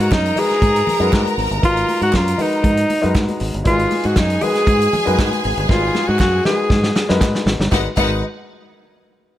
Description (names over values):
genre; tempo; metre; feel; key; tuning
disco; 118 BPM; 4/4; straight; unclear; A4 = 440 Hz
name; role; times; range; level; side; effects
breathy alto saxophone; melody; 0.0-7.2 s; D#4 to G#4; -18 LUFS; equal; none
clear studio string section; second line; 0.0-8.2 s; D#4 to A#5; -24 LUFS; equal; none
dark concert grand piano; accompaniment; 0.0-8.2 s; F#3 to C#5; -23 LUFS; left 2 dB; none
fingered electric bass; bass; 0.0-8.2 s; G1 to G#2; -20 LUFS; equal; none
vintage drum kit; drums; 0.0-8.1 s; crash cymbal, hi-hat, kick drum, snare drum; -20 LUFS; equal; none
congas; percussion; 0.1-8.2 s; none; -30 LUFS; left 3 dB; none
group handclap; percussion; 0.1-8.2 s; none; -34 LUFS; right 7 dB; none
room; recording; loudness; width
light reverb; none; -14 LUFS; side -13 dB against mid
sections
0.0-7.7 A section; 7.7-9.4 B section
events
drum fill 5.7-7.7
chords
0.0 G#m7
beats
0.11 0.62 1.13 | 1.63 2.14 2.65 3.16 | 3.66 4.17 4.68 5.18 | 5.69 6.20 6.71 7.21 | 7.72